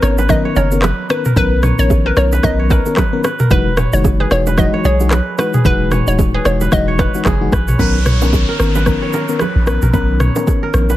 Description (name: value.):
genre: afrobeats.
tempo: 112 BPM.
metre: 4/4.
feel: swing 58% on 16ths.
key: B major.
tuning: A4 = 440 Hz.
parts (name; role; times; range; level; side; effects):
hollow square pluck; melody; 0.0-7.1 s; B4 to D#5; -20 LUFS; left 1 dB; chorus, digital delay.
mellow FM electric piano; accompaniment; 0.0-11.0 s; D#3 to A#4; -19 LUFS; left 5 dB; chorus.
kora; riff; 0.0-11.0 s; G#4 to C#5; -23 LUFS; right 5 dB; digital delay.
punchy sub bass; bass; 0.0-11.0 s; D#1 to B1; -15 LUFS; equal; none.
afro-pop drum kit; drums; 0.0-11.0 s; handclaps, kick drum, rim click, shaker, toms; -17 LUFS; equal; none.
bongos and congas; percussion; 0.2-11.0 s; none; -24 LUFS; right 7 dB; none.
downlifter; sound effects; 7.8-11.0 s; none; -26 LUFS; equal; none.
room: light reverb.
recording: heavily compressed radio sound.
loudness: -12 LUFS.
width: side -14 dB against mid.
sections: 0.0-7.8 A section; 7.8-11.0 B section.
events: none.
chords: 0.0 Bmaj9; 3.5 Emaj9; 7.8 Bmaj9.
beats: 0.29 0.83 | 1.36 1.90 2.44 2.97 | 3.51 4.04 4.58 5.11 | 5.65 6.18 6.72 7.26 | 7.79 8.33 8.86 9.40 | 9.94 10.47.